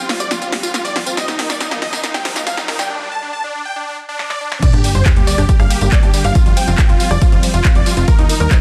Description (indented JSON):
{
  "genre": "uplifting trance",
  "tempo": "139 BPM",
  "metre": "4/4",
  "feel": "straight",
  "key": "G minor",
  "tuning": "A4 = 440 Hz",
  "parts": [
    { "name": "supersaw chords", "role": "melody", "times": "0.0-8.6 s", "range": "D4 to A5", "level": "-25 LUFS", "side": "equal", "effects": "vintage 12-bit sampler grit, sidechain pumping, low-pass filter, digital delay" },
    { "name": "bright grand piano", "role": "second line", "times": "0.0-8.6 s", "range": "Eb4 to G5", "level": "-30 LUFS", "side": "equal", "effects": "none" },
    { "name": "analog string pad", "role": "sustained chords", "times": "0.0-8.3 s", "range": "D3 to G4", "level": "-30 LUFS", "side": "equal", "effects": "ensemble chorus, sidechain pumping" },
    { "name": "riser and sub drop", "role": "sound effects", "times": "1.7-6.4 s", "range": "none", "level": "-27 LUFS", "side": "equal", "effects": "none" },
    { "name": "unison pluck", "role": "arpeggios", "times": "0.1-8.6 s", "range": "F3 to G5", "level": "-30 LUFS", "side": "equal", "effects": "subtle chorus, sidechain pumping, delay" },
    { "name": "punchy analog drum machine", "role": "drums", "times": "0.1-8.6 s", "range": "crash cymbal, handclaps, hi-hat, rim click, snare drum, tambourine", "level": "-24 LUFS", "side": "equal", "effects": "none" },
    { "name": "electronic kick drum", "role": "drums", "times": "4.6-8.6 s", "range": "none", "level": "-15 LUFS", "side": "equal", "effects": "none" },
    { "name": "plucky analog bass", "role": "bass", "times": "4.7-8.5 s", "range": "F1 to Eb2", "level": "-19 LUFS", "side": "equal", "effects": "sidechain pumping" }
  ],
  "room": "light reverb",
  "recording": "dense, heavily limited modern master, high-pass filter",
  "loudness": "-15 LUFS",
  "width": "mono",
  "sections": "0.0-4.6 A section; 4.6-8.6 B section",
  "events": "build-up 0.0-4.6; drum fill 0.0-2.9, 4.2-4.6; filter sweep on synth pluck 0.0-4.6; break 2.9-4.6; drop 4.6-8.6; impact 4.6-6.4",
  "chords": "0.0 Fsus2; 1.2 Ebadd9; 2.9 N.C.; 4.6 Gm; 6.4 Fsus2; 8.1 Ebadd9"
}